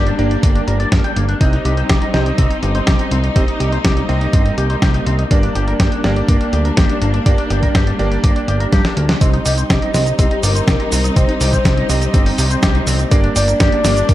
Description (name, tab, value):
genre	italo disco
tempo	123 BPM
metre	4/4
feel	straight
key	C minor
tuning	A4 = 441 Hz
part	dark studio string section	sustained chords	0.0-14.1 s	G3 to Eb4	-23 LUFS	left 2 dB	none
part	electric guitar with an envelope filter	arpeggios	0.0-14.1 s	Bb3 to G5	-25 LUFS	left 3 dB	analog chorus, low-pass filter, tape echo
part	clear electric grand piano	stabs	0.0-14.1 s	Bb3 to Eb5	-23 LUFS	right 3 dB	low-pass filter, tape echo
part	fat analog bass	bass	0.0-14.1 s	G1 to G2	-18 LUFS	equal	none
part	dusty soul sampler-style drum kit	drums	0.1-14.1 s	cabasa, hi-hat, snare drum	-20 LUFS	equal	none
part	electronic kick drum	drums	0.4-14.1 s	none	-15 LUFS	equal	overdrive
part	soft octave-layered synth lead	melody	9.5-14.1 s	G4 to Eb5	-21 LUFS	left 1 dB	chorus, tremolo, tape echo
room	light reverb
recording	dark, warm production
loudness	-13 LUFS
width	side -14 dB against mid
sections	0.0-9.2 A section; 9.2-14.1 B section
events	drum fill 8.7-9.2; band accent 9.1; filter sweep on electric grand piano 9.2-14.1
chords	0.0 Gm; 1.4 Cm; 5.3 Gm; 9.2 Cm; 13.1 Gm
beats	0.43 0.92 | 1.41 1.90 2.38 2.87 | 3.36 3.85 4.33 4.82 | 5.31 5.80 6.29 6.77 | 7.26 7.75 8.24 8.72 | 9.21 9.70 10.19 10.68 | 11.16 11.65 12.14 12.63 | 13.12 13.60 14.09